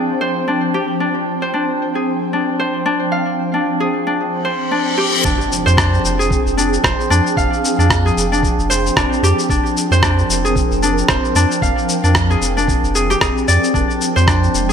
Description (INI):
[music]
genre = organic downtempo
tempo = 113 BPM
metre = 4/4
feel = swing 57% on 16ths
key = F dorian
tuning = A4 = 441 Hz
[part]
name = ethereal airy pad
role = sustained chords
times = 0.0-14.7 s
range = F3 to G5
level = -21 LUFS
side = right 1 dB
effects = ensemble chorus, built-in reverb, sidechain pumping
[part]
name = Celtic harp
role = arpeggios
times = 0.0-14.7 s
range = D4 to F5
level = -18 LUFS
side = left 1 dB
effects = digital delay
[part]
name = reverse cymbal and impact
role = sound effects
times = 4.6-7.4 s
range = none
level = -22 LUFS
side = left 2 dB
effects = none
[part]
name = warm sub bass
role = bass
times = 5.2-14.7 s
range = F1 to F2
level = -17 LUFS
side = right 1 dB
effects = none
[part]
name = electronic kick drum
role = drums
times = 5.2-14.4 s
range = none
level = -21 LUFS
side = equal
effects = none
[part]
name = electronic shaker and rim click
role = drums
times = 5.3-14.7 s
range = none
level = -20 LUFS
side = left 1 dB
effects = none
[sound]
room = light reverb, digital ambience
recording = bright 1980s-style digital production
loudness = -14 LUFS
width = side -7 dB against mid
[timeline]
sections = 0.0-5.2 A section; 5.2-14.7 B section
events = reverse cymbal 4.6-5.2; impact 5.2-7.4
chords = 0.0 Fm69